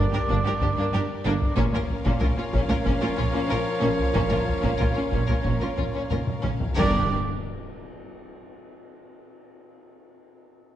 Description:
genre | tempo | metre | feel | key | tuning
cinematic, epic orchestral film score | 92 BPM | 4/4 | straight | unclear | A4 = 440 Hz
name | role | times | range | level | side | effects
rich chamber violin section | melody | 0.0-7.1 s | Db4 to Bb4 | -33 LUFS | left 3 dB | none
rich symphonic viola section | accompaniment | 0.0-7.2 s | Db4 to D4 | -34 LUFS | right 1 dB | none
mellow French horn section | sustained chords | 0.0-7.1 s | F3 to Bb4 | -33 LUFS | left 3 dB | none
rich symphonic string section | sustained chords | 0.0-7.2 s | Db4 to F5 | -35 LUFS | equal | none
warm trumpet | stabs | 0.0-7.1 s | Db5 to D5 | -31 LUFS | right 3 dB | none
rich symphonic double bass section | bass | 0.0-7.2 s | G1 to Bb1 | -30 LUFS | right 2 dB | none
rich symphonic violin section | second line | 0.1-7.1 s | Bb3 to G4 | -35 LUFS | left 2 dB | none
rich studio cello section | bass | 0.1-7.2 s | G2 to Bb2 | -29 LUFS | right 2 dB | none
taiko ensemble | drums | 0.1-6.9 s | none | -27 LUFS | equal | none
timpani | percussion | 6.8-7.1 s | G2 | -33 LUFS | right 1 dB | none
impact | sound effects | 6.8-9.5 s | none | -37 LUFS | left 1 dB | none
room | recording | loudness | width
moderate scoring stage reverb, RT60 1.5 s | dark, warm production, nothing above 10.6 kHz | -22 LUFS | side -11 dB against mid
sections
0.0-6.8 A section; 6.8-9.5 B section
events
drum fill 6.1-6.8; impact 6.8-9.5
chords
0.0 Gm; 1.6 Bbm; 6.8 Gm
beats
0.29 0.93 | 1.57 2.21 2.86 3.50 | 4.15 4.80 5.46 6.12 | 6.79 7.46 8.12 8.79

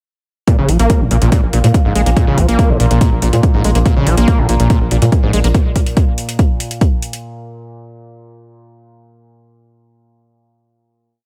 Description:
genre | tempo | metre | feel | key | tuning
driving peak-time techno | 142 BPM | 4/4 | straight | Bb minor | A4 = 441 Hz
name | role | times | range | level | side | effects
overdriven acid bass | riff | 0.5-5.5 s | Ab2 to Bb3 | -19 LUFS | equal | distortion, analog chorus, cassette tape, sidechain pumping, dub echo
overtone-sweeping drone | drone | 1.2-5.6 s | Bb2 | -26 LUFS | equal | chorus, built-in reverb, sidechain pumping
electronic hi-hat | drums | 0.5-7.2 s | none | -27 LUFS | equal | sidechain pumping on hats
electronic kick drum | drums | 0.5-6.9 s | none | -15 LUFS | equal | overdrive
tight sequencer bass | bass | 0.6-5.5 s | Bb1 to Bb2 | -16 LUFS | equal | sidechain pumping
room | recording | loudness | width
light reverb, digital ambience | echo-heavy mix | -13 LUFS | mono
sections
0.5-7.2 groove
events
none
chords
none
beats
| 0.48 0.90 1.32 1.74 | 2.17 2.59 3.01 3.43 | 3.86 4.28 4.70 5.12 | 5.55 5.97 6.39 6.81

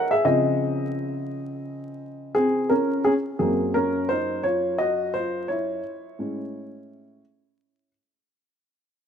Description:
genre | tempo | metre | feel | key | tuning
hip hop | 86 BPM | 4/4 | swing 59% on 16ths | Gb lydian | A4 = 438 Hz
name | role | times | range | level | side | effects
dark upright piano | solo | 0.0-7.9 s | Gb2 to F#5 | -22 LUFS | equal | none
room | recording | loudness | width
moderate plate reverb, RT60 3.2 s | vinyl crackle | -22 LUFS | side -8 dB against mid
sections
0.0-3.1 A section; 3.1-8.6 B section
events
upright piano solo 0.0-3.1, 3.1-8.6; fade-out 3.1-8.6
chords
0.3 Dbmaj9; 3.1 Gbmaj7; 5.8 Amaj7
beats
| 0.26 0.96 1.66 2.35 | 3.05 3.75 4.45 5.14 | 5.84 6.54 7.24

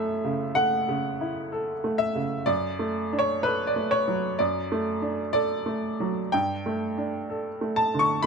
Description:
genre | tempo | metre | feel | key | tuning
neoclassical minimalist piano | 63 BPM | 4/4 | rubato | D major | A4 = 440 Hz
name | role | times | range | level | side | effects
clear upright piano | solo | 0.0-8.3 s | F#2 to C#6 | -24 LUFS | right 1 dB | none
room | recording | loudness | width
little or no reverb | close, detailed microphones | -24 LUFS | side -5 dB against mid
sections
0.0-8.3 A section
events
none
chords
0.0 F#m7; 2.5 D/F#; 6.3 Gsus2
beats
0.57 1.53 | 2.48 3.44 4.38 5.33 | 6.33 7.29 8.24

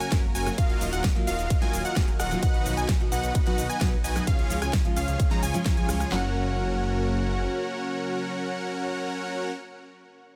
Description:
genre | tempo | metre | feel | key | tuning
EDM, festival progressive house | 130 BPM | 4/4 | straight | F# major | A4 = 436 Hz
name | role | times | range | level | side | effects
lush unison pad | sustained chords | 0.0-9.5 s | C#3 to E#5 | -39 LUFS | equal | chorus, sidechain pumping
plucky unison lead | arpeggios | 0.0-9.5 s | E#5 to A#5 | -36 LUFS | equal | sidechain pumping, digital delay
supersaw chords | riff | 0.0-9.5 s | C#4 to A#5 | -34 LUFS | equal | sidechain pumping, digital delay
big-room dance drum kit | drums | 0.0-6.1 s | hi-hat, ride cymbal, rim click, shaker, snare drum | -37 LUFS | equal | none
picked steel-string acoustic guitar | accompaniment | 0.1-9.5 s | B2 to B4 | -36 LUFS | equal | sidechain pumping, digital delay
detuned saw bass | bass | 0.1-7.5 s | D#1 to C#2 | -33 LUFS | equal | chorus, sidechain pumping
big-room dance drum kit | drums | 0.1-6.2 s | handclaps, kick drum, snare drum | -27 LUFS | equal | none
room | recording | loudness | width
little or no reverb | none | -26 LUFS | mono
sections
0.0-6.1 A section; 6.1-9.8 B section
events
drop 0.0-6.1; band accent 5.7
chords
0.0 F#; 0.6 D#madd9; 2.4 B; 4.3 C#; 6.1 F#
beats
0.12 | 0.58 1.04 1.50 1.97 | 2.43 2.89 3.35 3.81 | 4.27 4.74 5.20 5.66 | 6.12 6.58 7.04 7.50 | 7.96 8.43 8.89 9.35

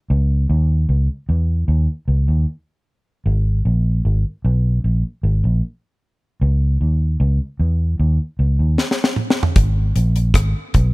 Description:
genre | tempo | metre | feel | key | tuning
dub reggae | 76 BPM | 4/4 | straight | G# minor | A4 = 439 Hz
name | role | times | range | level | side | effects
vintage muted fingered electric bass | bass | 0.1-10.9 s | G#1 to E2 | -16 LUFS | equal | none
deep reggae drum kit | drums | 8.8-10.9 s | hi-hat, kick drum, rim click, snare drum, toms | -17 LUFS | equal | none
room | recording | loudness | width
little or no reverb | none | -16 LUFS | side -24 dB against mid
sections
0.0-9.6 A section; 9.6-10.9 B section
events
drum fill 8.8-9.6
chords
none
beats
| 0.10 0.89 1.67 2.46 | 3.25 4.04 4.83 5.62 | 6.41 7.20 7.98 8.77 | 9.56 10.35

